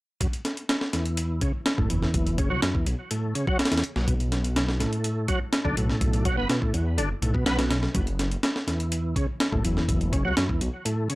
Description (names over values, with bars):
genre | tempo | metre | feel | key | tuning
breakbeat, breaks | 124 BPM | 4/4 | straight | unclear | A4 = 440 Hz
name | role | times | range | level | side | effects
bright tonewheel organ | riff | 0.2-11.2 s | E2 to B3 | -27 LUFS | equal | overdrive, chorus vibrato, slow rotary speaker, tube saturation, vintage 12-bit sampler grit, low-pass filter, analog delay
breakbeat sampler-style drum kit | drums | 0.2-11.2 s | hi-hat, kick drum, snare drum | -26 LUFS | equal | none
dark detuned saw bass | bass | 1.8-10.7 s | F#1 to E2 | -27 LUFS | equal | none
room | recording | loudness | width
light reverb | dry, gritty hardware recording | -23 LUFS | side -20 dB against mid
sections
0.2-11.2 A section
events
none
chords
0.2 F#m; 4.1 B7(no3); 8.0 F#m